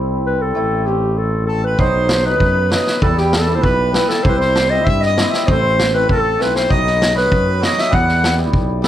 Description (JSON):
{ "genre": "klezmer", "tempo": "98 BPM", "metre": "2/4", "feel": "straight", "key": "A dorian sharp4", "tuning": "A4 = 440 Hz", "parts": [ { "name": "hammered dulcimer", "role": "accompaniment", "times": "0.0-8.9 s", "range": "F#3 to E4", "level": "-21 LUFS", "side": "equal", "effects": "none" }, { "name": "mellow tuba", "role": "bass", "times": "0.0-8.9 s", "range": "A1 to G2", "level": "-19 LUFS", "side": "equal", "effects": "none" }, { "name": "dark clarinet", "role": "melody", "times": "0.3-8.9 s", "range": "G4 to F#5", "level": "-18 LUFS", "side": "equal", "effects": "none" }, { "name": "accordion", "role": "second line", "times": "1.5-8.9 s", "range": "G4 to F#5", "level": "-22 LUFS", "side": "equal", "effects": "none" }, { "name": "street-band drum kit", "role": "drums", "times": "1.8-8.9 s", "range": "kick drum, snare drum", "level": "-18 LUFS", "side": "equal", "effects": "none" } ], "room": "light reverb", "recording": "close, detailed microphones", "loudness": "-13 LUFS", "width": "side -11 dB against mid", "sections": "0.0-1.8 A section; 1.8-8.9 B section", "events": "drum fill 6.4-6.7", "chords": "0.0 C; 0.6 Am; 1.8 B; 3.0 Em; 4.2 C; 5.5 Am; 6.7 B; 7.9 Em" }